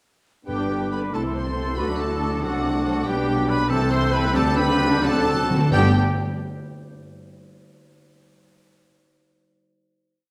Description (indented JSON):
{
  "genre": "quick classical-period movement for symphony orchestra",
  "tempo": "92 BPM (dotted quarters)",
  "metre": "6/8",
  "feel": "rubato",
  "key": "G major",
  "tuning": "A4 = 439 Hz",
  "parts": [
    { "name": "clear studio violin section", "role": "melody", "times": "0.5-6.0 s", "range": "F#5 to C6", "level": "-33 LUFS", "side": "equal", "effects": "none" },
    { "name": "clear oboe", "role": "second line", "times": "0.5-5.9 s", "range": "A4 to D5", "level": "-37 LUFS", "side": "equal", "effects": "none" },
    { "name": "mellow clarinet", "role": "second line", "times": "0.5-5.9 s", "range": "B3 to F#4", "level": "-33 LUFS", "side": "equal", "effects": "none" },
    { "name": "rich studio violin section", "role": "second line", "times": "0.5-6.0 s", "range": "B3 to C5", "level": "-35 LUFS", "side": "equal", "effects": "none" },
    { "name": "small flute group", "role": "second line", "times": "0.5-6.0 s", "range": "C6 to G6", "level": "-36 LUFS", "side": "equal", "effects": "none" },
    { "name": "warm symphonic viola section", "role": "accompaniment", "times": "0.5-6.0 s", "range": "D3 to D4", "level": "-33 LUFS", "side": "equal", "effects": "none" },
    { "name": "mellow French horn section", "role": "sustained chords", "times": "0.5-5.9 s", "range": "E3 to F#4", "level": "-31 LUFS", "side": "equal", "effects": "none" },
    { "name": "clear trumpet section", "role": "stabs", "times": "0.5-5.9 s", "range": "F#4 to C5", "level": "-29 LUFS", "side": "equal", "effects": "none" },
    { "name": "dark studio cello section", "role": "bass", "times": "0.5-6.0 s", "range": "G2 to D3", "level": "-30 LUFS", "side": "equal", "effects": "none" },
    { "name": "rich studio double bass section", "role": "bass", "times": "0.5-6.0 s", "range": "G1 to D2", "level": "-30 LUFS", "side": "equal", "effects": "none" },
    { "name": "timpani", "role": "percussion", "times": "0.5-1.1, 4.4-5.9 s", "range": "G2 to D3", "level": "-30 LUFS", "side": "equal", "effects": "none" }
  ],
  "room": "wet concert hall reverb, RT60 1.7 s",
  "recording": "none",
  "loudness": "-22 LUFS",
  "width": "mono",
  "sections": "0.5-5.7 A section; 5.7-7.1 final chord",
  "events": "timpani fill 5.0-5.7",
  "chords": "0.5 G; 1.1 Am/C; 1.8 D; 2.4 D7/C; 3.1 G/B; 3.7 Am/C; 4.4 D7sus4; 5.0 D7; 5.7 G"
}